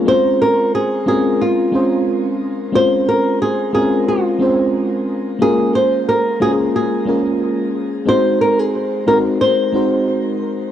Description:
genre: chillout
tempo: 90 BPM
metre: 4/4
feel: swing 54% on 16ths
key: Db major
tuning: A4 = 440 Hz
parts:
  - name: mellow FM electric piano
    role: accompaniment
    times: 0.0-10.7 s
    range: Ab3 to C5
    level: -17 LUFS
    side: equal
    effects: chorus, auto-pan, cassette tape, shimmer reverb, analog delay
  - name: flamenco guitar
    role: melody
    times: 0.1-10.4 s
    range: F4 to C5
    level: -17 LUFS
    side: equal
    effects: cassette tape, shimmer reverb, analog delay
room: moderate lush hall reverb, RT60 2.5 s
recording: home recording on cassette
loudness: -14 LUFS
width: side -10 dB against mid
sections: 0.0-10.7 A section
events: none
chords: 0.1 Dbmaj7; 5.4 Bbm7; 8.1 Ab7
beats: | 0.07 0.74 1.41 2.07 | 2.74 3.41 4.07 4.74 | 5.41 6.07 6.74 7.41 | 8.07 8.74 9.41 10.07

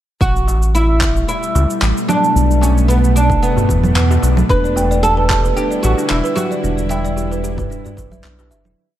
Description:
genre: organic downtempo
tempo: 112 BPM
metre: 4/4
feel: swing 53% on 16ths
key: E minor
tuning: A4 = 441 Hz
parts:
  - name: oud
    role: melody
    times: 0.2-7.4 s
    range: B3 to B4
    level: -19 LUFS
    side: right 1 dB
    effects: tape echo
  - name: bowed-like drone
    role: sustained chords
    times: 1.2-8.7 s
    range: B2 to E4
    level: -21 LUFS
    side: equal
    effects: built-in reverb, sidechain pumping
  - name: round analog bass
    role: bass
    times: 0.2-8.7 s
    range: E1 to E2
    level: -15 LUFS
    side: equal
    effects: sidechain pumping
  - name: electronic cabasa, handclaps and congas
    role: drums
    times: 0.2-8.8 s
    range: none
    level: -22 LUFS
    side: right 2 dB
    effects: none
  - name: electronic kick drum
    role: drums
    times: 0.2-8.1 s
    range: none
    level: -19 LUFS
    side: equal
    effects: none
  - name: darbuka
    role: percussion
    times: 0.5-8.6 s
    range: none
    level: -26 LUFS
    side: left 1 dB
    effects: none
  - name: kalimba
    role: arpeggios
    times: 4.5-8.8 s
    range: D4 to G5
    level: -22 LUFS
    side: right 1 dB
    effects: digital delay
room: light reverb, studio reverb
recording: lossy compression artefacts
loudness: -13 LUFS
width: side -12 dB against mid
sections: 0.2-8.8 groove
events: fade-out 5.9-8.8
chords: 0.2 A7sus2; 2.4 Bm7; 4.5 Em7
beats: | 0.21 0.74 1.28 1.81 | 2.35 2.88 3.42 3.96 | 4.49 5.03 5.56 6.10 | 6.63 7.17 7.71 8.24

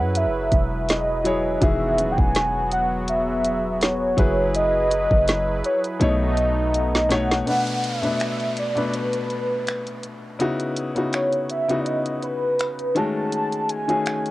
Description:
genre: contemporary R&B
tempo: 82 BPM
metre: 4/4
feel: swing 54% on 16ths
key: unclear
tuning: A4 = 440 Hz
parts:
  - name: warm velvety synth lead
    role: melody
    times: 0.0-14.3 s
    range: B4 to A5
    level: -23 LUFS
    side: equal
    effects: chorus, cassette tape, tape echo
  - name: clear concert grand piano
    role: accompaniment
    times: 0.0-14.3 s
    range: B2 to C#5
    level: -26 LUFS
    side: left 2 dB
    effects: none
  - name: warm analog pad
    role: sustained chords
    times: 0.0-7.5 s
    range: F#3 to B4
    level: -28 LUFS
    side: right 1 dB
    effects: chorus
  - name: warm 808-style bass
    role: bass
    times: 0.0-7.4 s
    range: D#1 to F#2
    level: -26 LUFS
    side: equal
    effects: none
  - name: smooth R&B drum kit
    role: drums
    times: 0.2-14.3 s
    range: finger snaps, hi-hat, kick drum, snare drum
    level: -23 LUFS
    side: equal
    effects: overdrive, vintage 12-bit sampler grit, cassette tape
  - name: mallet-like synth pluck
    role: texture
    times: 2.0-6.3 s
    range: C#4 to F#4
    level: -40 LUFS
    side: right 1 dB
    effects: none
  - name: downlifter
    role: sound effects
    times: 7.5-13.3 s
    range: none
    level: -35 LUFS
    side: right 1 dB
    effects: none
room: light reverb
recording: home recording on cassette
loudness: -20 LUFS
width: side -17 dB against mid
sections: 0.0-7.5 A section; 7.5-14.3 B section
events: drum fill 6.0-7.5; break 7.5-14.3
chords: 0.0 F#9sus4; 1.6 Emaj9; 4.2 F#9sus4; 6.0 B9; 7.5 Bm7; 10.4 C#m11; 13.0 B13/D# (rootless)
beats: 0.15 0.89 | 1.62 2.35 3.08 3.81 | 4.54 5.28 6.01 6.74 | 7.47 8.20 8.94 9.67 | 10.40 11.13 11.86 12.59 | 13.33 14.06

